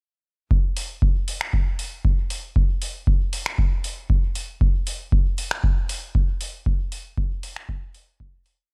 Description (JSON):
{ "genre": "techno", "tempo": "117 BPM", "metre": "4/4", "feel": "straight", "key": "none", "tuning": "none", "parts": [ { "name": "electronic kick drum", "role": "drums", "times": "0.5-8.3 s", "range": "none", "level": "-23 LUFS", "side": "equal", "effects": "none" }, { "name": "booming analog drum machine", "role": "drums", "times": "0.8-8.6 s", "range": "finger snaps, hi-hat", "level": "-33 LUFS", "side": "equal", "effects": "none" } ], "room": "little or no reverb", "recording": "none", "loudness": "-23 LUFS", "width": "mono", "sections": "0.5-8.7 groove", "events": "fade-out 6.0-8.7", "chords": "none", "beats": "| 0.51 1.02 1.53 2.05 | 2.56 3.07 3.59 4.10 | 4.61 5.12 5.64 6.15 | 6.66 7.18 7.69 8.20" }